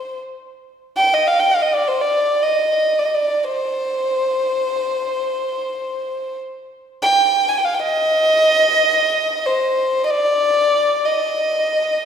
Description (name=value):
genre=Arabic maqam ensemble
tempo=free time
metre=none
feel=none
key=C minor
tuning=A4 = 440 Hz
part: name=dark violin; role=solo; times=0.0-12.1 s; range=C5 to Ab5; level=-16 LUFS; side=equal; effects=none
room=wet concert hall reverb, RT60 2.2 s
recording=heard from further back in the room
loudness=-15 LUFS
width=side -8 dB against mid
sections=0.0-12.1 A section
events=none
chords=none